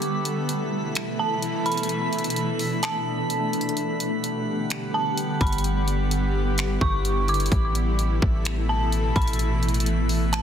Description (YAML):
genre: hip hop, atmospheric cloud-rap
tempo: 128 BPM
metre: 4/4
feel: half-time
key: unclear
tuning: A4 = 440 Hz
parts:
  - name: granular cloud pad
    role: sustained chords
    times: 0.0-10.4 s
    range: B2 to F#5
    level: -27 LUFS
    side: equal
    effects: built-in reverb, sidechain pumping
  - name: trap drum kit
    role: drums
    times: 0.0-10.4 s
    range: finger snaps, hi-hat, kick drum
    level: -27 LUFS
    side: equal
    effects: overdrive, soft clipping on snare
  - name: drifting glass-harmonics texture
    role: texture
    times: 0.0-10.4 s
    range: G4 to B5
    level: -33 LUFS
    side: right 2 dB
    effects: chorus, built-in reverb
  - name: dark detuned synth bell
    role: melody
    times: 1.2-10.4 s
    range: A5 to D6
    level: -29 LUFS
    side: right 2 dB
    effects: chorus, ping-pong delay
  - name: long sustained 808-style bass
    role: bass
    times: 5.4-10.4 s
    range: G1 to A1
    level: -24 LUFS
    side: equal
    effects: none
room: light reverb, digital ambience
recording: dense, heavily limited modern master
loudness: -22 LUFS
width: side -9 dB against mid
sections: 0.0-10.4 A section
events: break 0.0-3.8; kick muted 3.8-4.7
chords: 0.0 Asus2; 3.8 Gmaj7; 7.5 Asus2